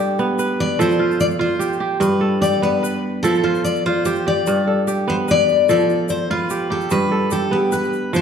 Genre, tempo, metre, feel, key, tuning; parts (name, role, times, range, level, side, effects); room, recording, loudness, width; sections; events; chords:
west african traditional, West African string and xylophone music; 98 BPM (dotted quarters); 12/8; straight; A4 = 440 Hz
kora; arpeggios; 0.0-8.2 s; G2 to B4; -18 LUFS; right 2 dB
tube shaker; percussion; 0.2-8.2 s; -36 LUFS; left 8 dB
picked steel-string acoustic guitar; melody; 0.6-8.2 s; G4 to D5; -20 LUFS; left 4 dB
wet recital hall reverb, RT60 1.4 s; dark, warm production; -16 LUFS; side -7 dB against mid
0.0-8.1 A section
steel-string acoustic guitar solo 0.0-8.1
0.0 G; 0.8 F; 2.0 G; 3.2 F; 4.5 G; 5.7 F; 6.9 G